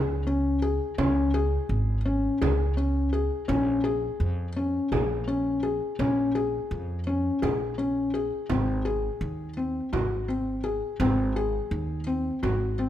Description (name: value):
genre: contemporary instrumental, chamber music in an uneven meter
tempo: 168 BPM (eighths)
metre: 7/8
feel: straight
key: Bb minor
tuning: A4 = 440 Hz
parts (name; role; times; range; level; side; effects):
- felt-muted upright piano; arpeggios; 0.0-12.9 s; C4 to Ab4; -26 LUFS; left 2 dB; none
- upright bass; bass; 0.0-12.9 s; Ab1 to F2; -29 LUFS; right 1 dB; none
- frame drum; percussion; 1.0-12.8 s; none; -33 LUFS; right 6 dB; none
room: light reverb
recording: close, detailed microphones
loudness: -24 LUFS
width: side -12 dB against mid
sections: 0.0-12.9 A section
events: none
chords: 0.0 Db5; 3.5 Bbm7; 8.5 Ab7